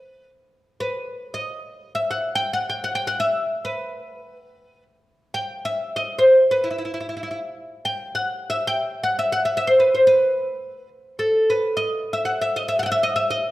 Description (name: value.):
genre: Arabic maqam ensemble.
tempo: free time.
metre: none.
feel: none.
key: E maqam nahawand.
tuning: A4 = 439 Hz.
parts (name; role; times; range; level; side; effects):
oud; solo; 0.0-13.5 s; E4 to G5; -19 LUFS; equal; none.
room: moderate recital hall reverb, RT60 1.5 s.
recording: none.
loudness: -19 LUFS.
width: side -16 dB against mid.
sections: 0.0-7.7 A section; 7.7-13.5 A section.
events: none.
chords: none.